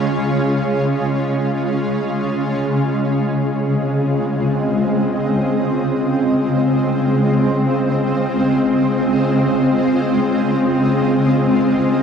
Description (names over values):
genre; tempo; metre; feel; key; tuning
ambient; free time; none; none; Db major; A4 = 440 Hz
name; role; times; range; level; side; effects
shimmering ambient pad; solo; 0.0-12.0 s; Db3 to Eb5; -15 LUFS; equal; chorus, built-in reverb, ping-pong delay
room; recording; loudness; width
wet concert hall reverb, RT60 2.0 s; dark, warm production; -15 LUFS; side -7 dB against mid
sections
0.0-2.6 A section; 2.6-12.0 B section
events
none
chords
0.0 Db; 2.6 Dbmaj7